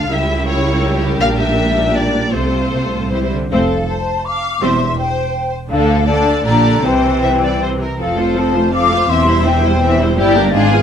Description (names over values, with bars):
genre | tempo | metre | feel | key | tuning
classical, dramatic, fast romantic movement for symphony orchestra | 149-169 BPM | 3/4 | rubato | F major | A4 = 438 Hz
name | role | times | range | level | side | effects
rich symphonic violin section | melody | 0.0-10.8 s | E#4 to F5 | -21 LUFS | left 3 dB | none
rich symphonic violin section | second line | 0.0-10.8 s | E4 to F5 | -22 LUFS | left 2 dB | none
rich symphonic viola section | accompaniment | 0.0-10.8 s | D3 to F4 | -18 LUFS | equal | none
rich symphonic cello section | bass | 0.0-10.8 s | D2 to E3 | -20 LUFS | right 1 dB | none
rich symphonic double bass section | bass | 0.0-10.8 s | E1 to D2 | -20 LUFS | right 2 dB | none
mellow hollow flute section | second line | 3.5-10.8 s | D5 to D6 | -18 LUFS | left 3 dB | none
room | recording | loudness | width
moderate recital hall reverb, RT60 1.3 s | close, detailed microphones | -13 LUFS | side -8 dB against mid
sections
0.0-3.5 A section; 3.5-10.8 B section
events
none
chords
0.1 C#dim7; 1.2 Gm/Bb; 2.3 F/C; 3.1 C; 3.5 F; 4.6 C/E; 5.7 Dm; 6.5 Gm/Bb; 6.8 C; 8.0 F; 9.1 C/E; 10.2 Em7b5/G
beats
| 0.11 0.48 0.84 | 1.21 1.57 1.95 | 2.33 2.73 3.13 | 3.52 3.90 4.26 | 4.63 4.99 5.35 | 5.71 6.08 6.46 | 6.84 7.23 7.62 | 8.00 8.37 8.73 | 9.10 9.46 9.82 | 10.18 10.54